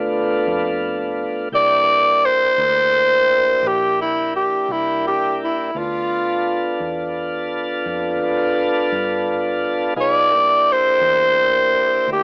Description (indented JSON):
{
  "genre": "slow blues",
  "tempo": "57 BPM (dotted quarters)",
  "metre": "12/8",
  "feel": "straight",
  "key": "unclear",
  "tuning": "A4 = 439 Hz",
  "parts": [
    { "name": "tonewheel organ", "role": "sustained chords", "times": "0.0-12.2 s", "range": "A3 to A4", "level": "-24 LUFS", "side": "equal", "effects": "slow rotary speaker, cassette tape" },
    { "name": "vintage muted fingered electric bass", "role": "bass", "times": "0.0-12.2 s", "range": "Bb1 to G2", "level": "-40 LUFS", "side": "equal", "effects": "transformer saturation" },
    { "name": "growling tenor saxophone", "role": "melody", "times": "1.6-12.2 s", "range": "E4 to D5", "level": "-18 LUFS", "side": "equal", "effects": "cassette tape" }
  ],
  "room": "moderate studio reverb, RT60 0.6 s",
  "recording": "home recording on cassette, AM radio sound",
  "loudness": "-18 LUFS",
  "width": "mono",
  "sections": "0.0-12.2 A section",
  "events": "none",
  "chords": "0.0 G7 (rootless); 1.5 C7; 5.7 G7; 10.0 C7"
}